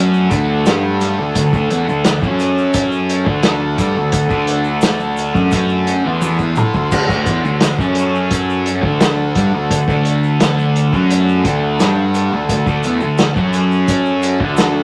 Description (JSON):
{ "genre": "psychedelic rock", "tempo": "86 BPM", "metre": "4/4", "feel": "straight", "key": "D major", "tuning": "A4 = 439 Hz", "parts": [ { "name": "pedal harmonium", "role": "sustained chords", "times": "0.0-14.8 s", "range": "D3 to C6", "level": "-23 LUFS", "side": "equal", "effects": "none" }, { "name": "thick fuzz guitar", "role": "riff", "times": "0.0-14.8 s", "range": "D3 to G4", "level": "-19 LUFS", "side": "equal", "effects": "distortion, phaser" }, { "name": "fuzz picked electric bass", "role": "bass", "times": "0.0-14.8 s", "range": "D2 to A2", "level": "-24 LUFS", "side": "equal", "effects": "overdrive" }, { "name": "egg shaker", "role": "percussion", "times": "0.1-14.7 s", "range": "none", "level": "-40 LUFS", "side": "equal", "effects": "none" }, { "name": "vintage drum kit", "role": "drums", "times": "0.3-14.7 s", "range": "crash cymbal, hi-hat, kick drum, snare drum, toms", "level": "-20 LUFS", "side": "equal", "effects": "none" } ], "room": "moderate studio ambience, RT60 0.5 s", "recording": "none", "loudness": "-15 LUFS", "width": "mono", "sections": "0.0-14.8 A section", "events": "drum fill 6.2-6.9", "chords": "0.0 D; 2.2 F#5; 3.3 D; 7.8 F#5; 8.8 D; 13.4 F#5", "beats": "0.67 | 1.36 2.05 2.75 3.44 | 4.14 4.83 5.53 6.22 | 6.92 7.62 8.31 9.01 | 9.71 10.40 11.10 11.80 | 12.49 13.19 13.89 14.58" }